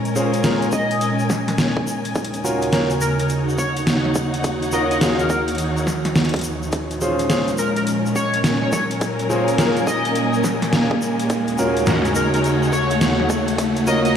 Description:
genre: glitch hop.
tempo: 105 BPM.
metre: 4/4.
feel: swing 64% on 16ths.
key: Bb minor.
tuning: A4 = 440 Hz.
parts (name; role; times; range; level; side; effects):
warbly tape-like pad; sustained chords; 0.0-14.2 s; Eb2 to Gb4; -23 LUFS; right 1 dB; chorus, built-in reverb, sidechain pumping.
riser; sound effects; 1.8-14.2 s; none; -28 LUFS; left 1 dB; none.
dark symphonic string section; texture; 0.0-14.2 s; Db4 to Ab5; -26 LUFS; left 1 dB; sidechain pumping.
dubstep drum kit; drums; 0.1-14.1 s; hi-hat, snare drum; -22 LUFS; equal; overdrive.
tube shaker; percussion; 0.1-14.1 s; none; -34 LUFS; left 2 dB; none.
warm concert grand piano; stabs; 0.2-14.1 s; Db4 to C5; -24 LUFS; right 1 dB; sidechain pumping, tape echo.
sync lead; melody; 0.7-14.1 s; Bb4 to Eb5; -26 LUFS; left 1 dB; wide subtle chorus, tape echo.
electronic kick drum; drums; 0.7-13.7 s; none; -25 LUFS; equal; overdrive, high-pass filter on kick, high-pass filter on room.
room: moderate lush hall reverb, RT60 2.5 s.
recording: played on a big sound system in a bare room, stone room reverb.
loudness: -17 LUFS.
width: side -8 dB against mid.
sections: 0.0-14.2 A section.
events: build-up 0.0-14.2; riser 1.8-14.2.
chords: 0.0 Bbm7; 2.2 Ebm7; 6.7 Bbm7; 11.3 Ebm7.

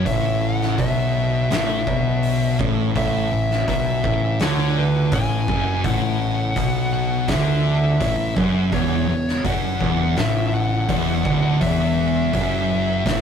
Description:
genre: stoner and doom metal.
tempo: 83 BPM.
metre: 4/4.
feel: straight.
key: unclear.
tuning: A4 = 440 Hz.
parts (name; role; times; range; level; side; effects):
fuzz lead guitar; melody; 0.0-13.2 s; B4 to G#5; -25 LUFS; left 1 dB; distortion, ping-pong delay.
thick fuzz guitar; riff; 0.0-13.2 s; D2 to D3; -23 LUFS; left 8 dB; distortion.
thick fuzz guitar; riff; 0.0-13.2 s; D2 to D3; -23 LUFS; right 5 dB; distortion.
growling picked electric bass; bass; 0.0-13.2 s; D1 to D2; -27 LUFS; equal; overdrive.
oversized low-tuned drum kit; drums; 0.1-13.2 s; hi-hat, kick drum, snare drum; -26 LUFS; equal; none.
room: moderate studio reverb, RT60 0.5 s.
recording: rough rehearsal-room recording, tube saturation.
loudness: -18 LUFS.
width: side -7 dB against mid.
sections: 0.0-13.2 A section.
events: none.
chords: 0.0 A5; 8.7 Dadd9.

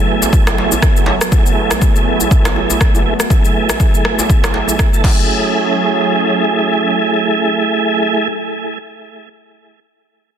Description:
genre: afro house.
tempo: 121 BPM.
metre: 4/4.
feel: swing 57% on 16ths.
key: F# minor.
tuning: A4 = 439 Hz.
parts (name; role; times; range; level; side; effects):
warm analog pad; sustained chords; 0.0-8.3 s; F#3 to G#4; -20 LUFS; right 2 dB; chorus, sidechain pumping.
tonewheel organ; stabs; 0.0-8.3 s; A3 to A4; -16 LUFS; right 2 dB; chorus vibrato, fast rotary speaker, sidechain pumping, low-pass filter, digital delay.
afro-pop drum kit; drums; 0.2-5.2 s; cabasa, crash cymbal, rim click; -20 LUFS; left 2 dB; soft clipping on snare.
djembe; percussion; 0.2-5.2 s; none; -23 LUFS; right 1 dB; none.
electronic kick drum; drums; 0.3-5.2 s; none; -13 LUFS; equal; overdrive.
room: light reverb.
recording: dense, heavily limited modern master.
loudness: -11 LUFS.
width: side -9 dB against mid.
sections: 0.0-5.3 A section; 5.3-9.3 B section.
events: none.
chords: 0.0 F#m9.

